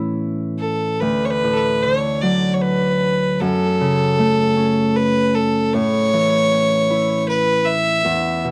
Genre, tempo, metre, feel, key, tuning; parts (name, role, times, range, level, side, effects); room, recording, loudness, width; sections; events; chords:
celtic folk, Celtic slow air; 77 BPM; 3/4; rubato; A4 = 441 Hz
Celtic harp; accompaniment; 0.0-8.5 s; D2 to E4; -21 LUFS; equal
rich fiddle; melody; 0.6-8.4 s; A4 to E5; -20 LUFS; equal
studio ambience; dry, close 1970s-style studio recording; -18 LUFS; mono
0.0-8.5 A section
0.0 A; 1.0 D; 3.4 F#m; 5.7 A